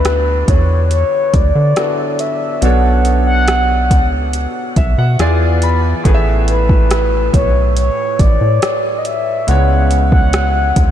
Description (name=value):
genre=contemporary R&B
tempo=70 BPM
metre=4/4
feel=straight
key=A major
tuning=A4 = 439 Hz
part: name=mellow horn-like synth lead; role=melody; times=0.0-10.9 s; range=B4 to F#5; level=-17 LUFS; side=left 1 dB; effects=chorus, ping-pong delay
part: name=clear concert grand piano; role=accompaniment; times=0.0-10.9 s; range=A2 to B5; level=-20 LUFS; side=equal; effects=wide subtle chorus
part: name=rubbery square bass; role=bass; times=0.0-10.9 s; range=A1 to D3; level=-14 LUFS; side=equal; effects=none
part: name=smooth R&B drum kit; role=drums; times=0.0-10.9 s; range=hi-hat, kick drum, rim click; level=-17 LUFS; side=equal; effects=none
room=moderate huge ambient reverb, RT60 7.3 s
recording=dreamy mix soaked in reverb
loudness=-11 LUFS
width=side -10 dB against mid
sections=0.0-10.9 A section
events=grand piano fill 4.3-6.1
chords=0.0 D6; 2.6 Bm7; 5.2 E7b9; 6.1 A5; 9.5 C#m7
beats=0.05 0.91 1.76 | 2.62 3.48 4.34 5.19 | 6.05 6.91 7.76 8.62 | 9.48 10.34